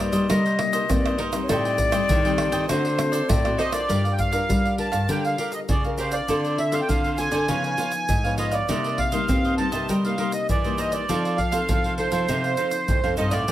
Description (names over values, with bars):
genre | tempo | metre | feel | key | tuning
samba and choro | 100 BPM | 4/4 | straight | G minor | A4 = 441 Hz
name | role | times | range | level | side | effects
breathy concert flute | second line | 0.0-3.9 s | C5 to Eb5 | -25 LUFS | left 3 dB | none
cavaquinho | accompaniment | 0.0-13.5 s | D4 to G5 | -30 LUFS | right 3 dB | none
nylon-string guitar | accompaniment | 0.0-13.5 s | G2 to Bb4 | -30 LUFS | left 4 dB | none
nylon-string guitar | bass | 0.0-13.5 s | Eb2 to C4 | -26 LUFS | equal | none
egg shaker, pandeiro, surdo and tamborim | percussion | 0.1-13.5 s | none | -27 LUFS | equal | none
accordion | melody | 3.6-13.5 s | C5 to A5 | -26 LUFS | right 2 dB | light tremolo tuning
room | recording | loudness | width
light reverb | none | -20 LUFS | side -13 dB against mid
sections
0.0-3.9 A section; 3.9-13.5 B section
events
none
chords
0.0 Cm7; 1.5 Am7b5; 2.7 D7; 3.9 Gm7; 6.3 Dm7; 7.5 C#9; 8.7 Cm7; 11.1 F7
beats
0.30 0.90 | 1.50 2.09 2.69 3.29 | 3.89 4.49 5.09 5.69 | 6.29 6.89 7.49 8.09 | 8.69 9.29 9.89 10.49 | 11.09 11.69 12.29 12.89 | 13.48